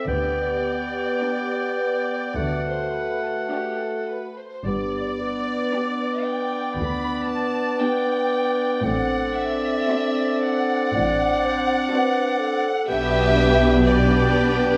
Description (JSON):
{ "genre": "classical", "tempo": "52-63 BPM", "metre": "4/4", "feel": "rubato", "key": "G major", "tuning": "A4 = 440 Hz", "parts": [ { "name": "dark studio violin section", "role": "melody", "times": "0.0-14.8 s", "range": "G4 to B5", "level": "-30 LUFS", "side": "equal", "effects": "none" }, { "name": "bright oboe", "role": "second line", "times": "0.0-14.8 s", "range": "D5 to G5", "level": "-31 LUFS", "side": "equal", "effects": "none" }, { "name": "dark clarinet", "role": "second line", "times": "0.0-14.8 s", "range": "G4 to D5", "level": "-30 LUFS", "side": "equal", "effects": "none" }, { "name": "mellow bassoon", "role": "accompaniment", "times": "0.0-14.8 s", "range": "A3 to C4", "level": "-30 LUFS", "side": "equal", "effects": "none" }, { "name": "mellow French horn section", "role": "sustained chords", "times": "0.1-14.8 s", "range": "A3 to G4", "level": "-31 LUFS", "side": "equal", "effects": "none" }, { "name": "rich studio double bass section", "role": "bass", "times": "0.1-14.8 s", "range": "G1 to D2", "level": "-29 LUFS", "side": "equal", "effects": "none" }, { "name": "warm studio cello section", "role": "bass", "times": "0.1-14.8 s", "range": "D2 to D3", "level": "-29 LUFS", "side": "equal", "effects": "none" }, { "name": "rich studio violin section", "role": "second line", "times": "1.2-14.8 s", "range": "F#4 to D5", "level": "-31 LUFS", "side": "equal", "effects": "none" }, { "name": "rich studio viola section", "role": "accompaniment", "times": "1.2-14.8 s", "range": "A3 to D4", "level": "-29 LUFS", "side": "equal", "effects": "none" } ], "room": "moderate concert hall reverb, RT60 1.8 s", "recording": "none", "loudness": "-22 LUFS", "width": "mono", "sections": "0.0-14.8 A section", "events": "none", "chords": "0.1 G/D; 2.4 D; 4.7 G; 8.8 D7/A; 12.9 G/B" }